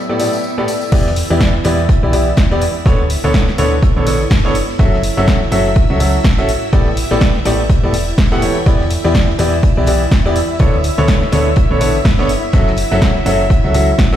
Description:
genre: piano house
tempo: 124 BPM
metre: 4/4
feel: swing 58% on 16ths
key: E dorian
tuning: A4 = 440 Hz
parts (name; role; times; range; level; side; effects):
- string machine, violins; sustained chords; 0.0-14.2 s; E4 to E5; -24 LUFS; right 1 dB; ensemble chorus, sidechain pumping
- ethereal airy pad; texture; 0.0-0.9 s; B3 to D5; -28 LUFS; left 2 dB; none
- warm grand piano; riff; 0.1-14.2 s; A2 to F#5; -16 LUFS; left 1 dB; sidechain pumping, dub echo
- punchy analog drum machine; drums; 0.2-14.1 s; crash cymbal, hi-hat, snare drum; -23 LUFS; equal; overdrive
- tambourine; percussion; 0.2-0.9 s; none; -32 LUFS; left 1 dB; none
- solid FM bass; bass; 0.9-14.2 s; E1 to E2; -18 LUFS; equal; sidechain pumping
- damped 70s drum kit; drums; 0.9-14.2 s; hi-hat, snare drum; -35 LUFS; left 4 dB; none
- electronic kick drum; drums; 0.9-14.1 s; none; -13 LUFS; equal; overdrive
room: light reverb, small room ambience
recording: played on a big sound system in a bare room, stone room reverb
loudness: -11 LUFS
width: side -11 dB against mid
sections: 0.9-14.2 A section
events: drop 0.9-14.2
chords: 0.0 A9sus4; 0.9 Em7; 2.9 Bm9/D; 4.5 F#m7; 6.5 A9sus4; 8.7 Em7; 10.6 Bm9/D; 12.3 F#m7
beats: 0.44 | 0.92 1.41 1.89 2.37 | 2.86 3.34 3.83 4.31 | 4.79 5.28 5.76 6.24 | 6.73 7.21 7.70 8.18 | 8.66 9.15 9.63 10.12 | 10.60 11.08 11.57 12.05 | 12.53 13.02 13.50 13.99

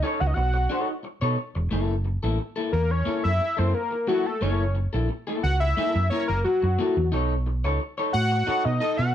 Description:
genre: funk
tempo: 89 BPM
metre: 4/4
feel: straight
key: unclear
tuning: A4 = 440 Hz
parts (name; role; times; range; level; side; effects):
- fat analog lead; melody; 0.0-9.1 s; F#4 to F#5; -25 LUFS; left 1 dB; chorus, slapback echo
- electric guitar at the edge of break-up; accompaniment; 0.0-9.0 s; A#3 to D#5; -29 LUFS; left 3 dB; none
- hollow-body short-scale fingered electric bass; bass; 0.2-9.1 s; E1 to B2; -24 LUFS; right 1 dB; none
room: light reverb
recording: none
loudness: -22 LUFS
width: side -10 dB against mid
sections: 0.0-1.7 A section; 1.7-9.1 B section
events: analog synth lead solo 1.7-9.1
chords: 0.0 B9; 1.7 F#7#9; 7.1 B9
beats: 0.37 1.04 | 1.72 2.39 3.07 3.74 | 4.42 5.09 5.77 6.44 | 7.12 7.79 8.47 9.14

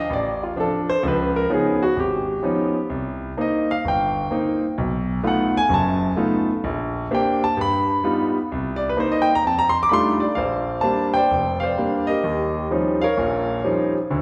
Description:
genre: solo jazz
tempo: 128 BPM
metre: 4/4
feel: swing 67% on 8ths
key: Bb major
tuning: A4 = 440 Hz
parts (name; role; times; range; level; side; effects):
- clear grand piano; solo; 0.0-14.2 s; F1 to D6; -21 LUFS; equal; none
room: wet concert hall reverb, RT60 1.8 s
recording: recorded in a church or concert hall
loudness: -21 LUFS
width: mono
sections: 0.0-10.4 A section; 10.4-14.2 B section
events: grand piano solo 0.0-10.4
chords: 0.0 Dm7; 1.0 Db9; 2.9 Cm7; 4.8 B7#11; 6.6 Bb69; 7.6 G7b13; 8.5 Cm7; 9.4 F13; 10.4 Bb69; 12.2 Eb13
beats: 0.09 0.56 | 1.02 1.49 1.96 2.43 | 2.89 3.36 3.83 4.30 | 4.76 5.23 5.70 6.17 | 6.63 7.10 7.57 8.03 | 8.50 8.97 9.43 9.90 | 10.37 10.83 11.30 11.77 | 12.23 12.70 13.17 13.63 | 14.10

